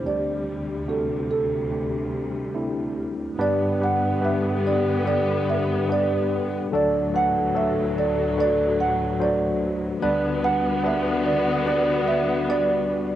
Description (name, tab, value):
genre	pop ballad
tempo	72 BPM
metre	4/4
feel	straight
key	G major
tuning	A4 = 440 Hz
part	marimba with soft mallets	melody	0.0-13.1 s	A4 to F#5	-24 LUFS	right 4 dB	cassette tape, plate reverb
part	tine electric piano	accompaniment	0.0-13.2 s	D2 to D5	-26 LUFS	left 1 dB	slow stereo tremolo, cassette tape, plate reverb
part	warm studio string section	sustained chords	0.0-13.2 s	D2 to B3	-28 LUFS	left 1 dB	cassette tape, plate reverb
part	mellow French horn section	second line	3.4-13.2 s	F#4 to A4	-29 LUFS	left 7 dB	cassette tape, plate reverb
room	wet studio reverb, RT60 0.6 s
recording	home recording on cassette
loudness	-21 LUFS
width	side -12 dB against mid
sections	0.0-3.4 A section; 3.4-13.2 B section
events	none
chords	0.1 D7sus4; 3.4 G; 6.7 D; 10.0 G/D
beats	| 0.06 0.88 1.71 2.55 | 3.39 4.22 5.06 5.89 | 6.72 7.54 8.37 9.19 | 10.01 10.83 11.66 12.49